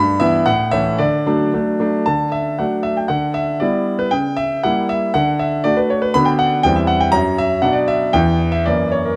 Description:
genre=classical-period piano sonatina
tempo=109-122 BPM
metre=2/4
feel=rubato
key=D major, B minor from 6.2 s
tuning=A4 = 443 Hz
part: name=bright concert grand piano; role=solo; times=0.0-9.2 s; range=E2 to B5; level=-17 LUFS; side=equal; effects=none
room=light reverb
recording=close, detailed microphones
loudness=-17 LUFS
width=mono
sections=0.0-2.1 A section; 2.1-9.2 A section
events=none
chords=0.5 A; 1.0 D; 3.1 Em7/D; 4.1 C#dim7; 5.2 D; 6.2 Bm/D; 6.7 C/E; 7.1 F#; 7.6 Bm; 8.1 Em; 8.7 F#7

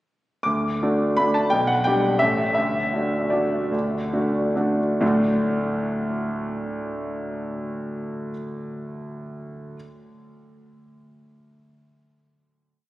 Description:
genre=classical, piano waltz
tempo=129-179 BPM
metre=3/4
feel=rubato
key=D major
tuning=A4 = 440 Hz
part: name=warm concert grand piano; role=solo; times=0.4-9.8 s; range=A1 to D6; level=-21 LUFS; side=equal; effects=none
room=wet cathedral reverb, RT60 4.6 s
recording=recorded on a phone in the room, studio reverb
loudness=-21 LUFS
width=side -16 dB against mid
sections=0.5-5.0 A section; 5.0-7.6 final chord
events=slowing down 2.0-5.0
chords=0.5 D; 1.5 G/B; 2.2 A7; 2.6 D

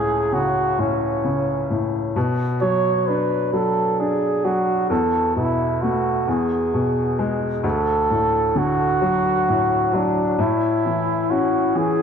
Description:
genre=pop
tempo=44 BPM (dotted quarters)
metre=6/8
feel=straight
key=A major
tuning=A4 = 441 Hz
part: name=breathy flugelhorn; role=melody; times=0.0-12.0 s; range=C#4 to C#5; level=-21 LUFS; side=right 2 dB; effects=ping-pong delay
part: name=clear baby grand piano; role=accompaniment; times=0.0-12.0 s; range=C#2 to D4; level=-21 LUFS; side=left 2 dB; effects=none
room=wet plate reverb, RT60 2.3 s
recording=dreamy mix soaked in reverb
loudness=-18 LUFS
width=side -7 dB against mid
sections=0.0-7.6 A section; 7.6-12.0 B section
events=none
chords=0.0 A/C#; 2.2 Bm; 4.9 Esus4; 6.3 E; 7.6 D; 10.4 A

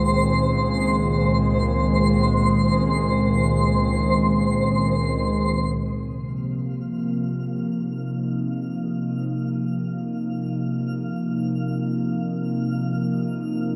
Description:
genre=ambient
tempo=free time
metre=none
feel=none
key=unclear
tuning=A4 = 439 Hz
part: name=airy breathy pad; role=sustained chords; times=0.0-13.8 s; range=Db2 to Eb4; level=-23 LUFS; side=equal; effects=chorus, shimmer reverb
part: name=twinkling granular texture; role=texture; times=0.0-13.8 s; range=C5 to F6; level=-30 LUFS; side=equal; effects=built-in reverb, shimmer reverb
room=wet spring reverb, RT60 2.4 s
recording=none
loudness=-23 LUFS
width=mono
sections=0.0-5.8 A section; 5.8-13.8 B section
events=fade-in on synth texture 5.8-13.8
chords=0.0 Dbsus2; 5.8 Ebsus2

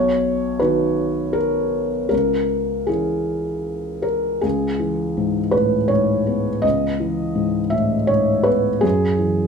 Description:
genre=neoclassical minimalist piano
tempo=80 BPM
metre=3/4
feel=uneven beats, rubato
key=C# dorian, C# minor from 4.4 s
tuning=A4 = 440 Hz
part: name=felt-muted upright piano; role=solo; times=0.0-9.5 s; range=B1 to E5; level=-18 LUFS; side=equal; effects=none
room=moderate large studio reverb, RT60 0.8 s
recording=band playing live in one room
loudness=-18 LUFS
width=side -6 dB against mid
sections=0.0-4.4 A section; 4.4-9.5 B section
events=none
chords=0.0 B; 2.1 C#m; 4.4 C#m7; 8.8 F#7(no3)

